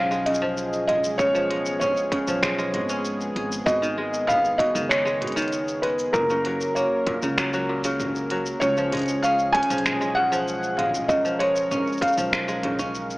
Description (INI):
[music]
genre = folktronica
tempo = 97 BPM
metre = 4/4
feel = straight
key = Db mixolydian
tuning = A4 = 440 Hz
[part]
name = felt-muted upright piano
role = melody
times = 0.0-13.2 s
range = Bb4 to Ab5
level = -23 LUFS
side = equal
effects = none
[part]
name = warm analog pad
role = sustained chords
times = 0.0-13.2 s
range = Eb3 to Bb4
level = -32 LUFS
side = equal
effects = chorus, vintage 12-bit sampler grit
[part]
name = kora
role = arpeggios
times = 0.0-13.2 s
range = Bb2 to Ab4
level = -27 LUFS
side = equal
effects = digital delay
[part]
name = upright bass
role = bass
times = 0.0-13.2 s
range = Gb1 to Db2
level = -36 LUFS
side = equal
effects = none
[part]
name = organic electronic drum kit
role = drums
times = 0.1-13.2 s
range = finger snaps, hi-hat, shaker, toms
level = -29 LUFS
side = equal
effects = overdrive
[part]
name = electronic kick drum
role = drums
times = 1.2-12.9 s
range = none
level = -30 LUFS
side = equal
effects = overdrive
[sound]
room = light reverb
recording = AM radio sound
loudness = -21 LUFS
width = side -21 dB against mid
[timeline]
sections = 0.0-13.2 A section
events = none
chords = 0.0 Db; 3.7 Abm; 6.1 Gb; 8.6 Db